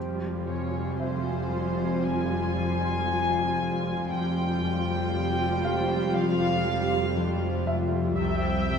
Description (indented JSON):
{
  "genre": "cinematic, suspense film score",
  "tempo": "59 BPM",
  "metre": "4/4",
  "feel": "straight",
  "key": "F harmonic minor",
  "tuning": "A4 = 440 Hz",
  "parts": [
    { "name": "rich studio viola section", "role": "accompaniment", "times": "0.0-8.8 s", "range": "G3 to E5", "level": "-33 LUFS", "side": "right 2 dB", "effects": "none" },
    { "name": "evolving wavetable pad", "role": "sustained chords", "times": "0.0-8.8 s", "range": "F4 to C6", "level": "-34 LUFS", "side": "right 2 dB", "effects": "chorus, built-in reverb, phaser" },
    { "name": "concert harp", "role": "riff", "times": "0.0-8.8 s", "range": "F2 to F3", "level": "-32 LUFS", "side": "left 8 dB", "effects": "none" },
    { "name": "rich studio double bass section", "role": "bass", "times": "0.0-8.8 s", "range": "F1 to C2", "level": "-34 LUFS", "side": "right 4 dB", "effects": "none" },
    { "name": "warm studio cello section", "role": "bass", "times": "0.0-8.8 s", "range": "C2 to F2", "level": "-35 LUFS", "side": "right 6 dB", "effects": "none" },
    { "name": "bowed-like drone", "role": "drone", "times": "0.0-8.8 s", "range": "C2 to F2", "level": "-31 LUFS", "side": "left 1 dB", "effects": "built-in reverb" },
    { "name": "warm studio violin section", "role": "melody", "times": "0.5-8.8 s", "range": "C5 to Ab5", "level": "-31 LUFS", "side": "left 1 dB", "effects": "none" },
    { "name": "clear grand piano", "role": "texture", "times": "1.0-8.8 s", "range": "F4 to F5", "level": "-38 LUFS", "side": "equal", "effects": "none" }
  ],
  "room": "wet concert hall reverb, RT60 1.7 s",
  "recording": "none",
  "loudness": "-24 LUFS",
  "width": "side -6 dB against mid",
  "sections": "0.0-8.8 A section",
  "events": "none",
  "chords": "0.0 Fmadd9; 8.2 C",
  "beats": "1.01 2.07 3.11 | 4.12 5.14 6.16 7.17 | 8.20"
}